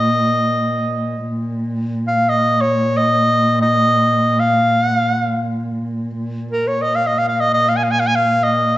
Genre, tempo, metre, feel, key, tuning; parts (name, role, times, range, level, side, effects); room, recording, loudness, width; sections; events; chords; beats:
mongolian traditional, Mongolian folk; free time; Bb yu mode; A4 = 438 Hz
clear alto saxophone; melody; 0.0-8.8 s; Bb4 to Ab5; -15 LUFS; equal
dark cello; drone; 0.0-8.8 s; Bb2; -20 LUFS; equal
wet recital hall reverb, RT60 1.4 s; nothing above 7.9 kHz; -15 LUFS; side -15 dB against mid
0.0-8.8 A section
free time